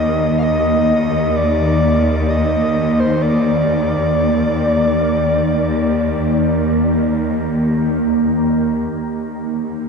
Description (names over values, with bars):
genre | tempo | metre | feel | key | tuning
ambient | free time | none | none | Eb major | A4 = 441 Hz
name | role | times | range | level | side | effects
breathy flute-like synth lead | melody | 0.0-8.0 s | C5 to F5 | -19 LUFS | equal | chorus, diffuse ambient delay
glassy FM pad | sustained chords | 0.0-9.9 s | Eb3 to G4 | -17 LUFS | equal | ensemble chorus, built-in reverb
warm studio cello section | bass | 0.0-9.9 s | Eb2 | -22 LUFS | equal | none
room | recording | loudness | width
wet huge ambient reverb, RT60 7.5 s | dreamy mix soaked in reverb | -14 LUFS | side -5 dB against mid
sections
0.0-9.0 A section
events
none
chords
0.0 Eb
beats
free time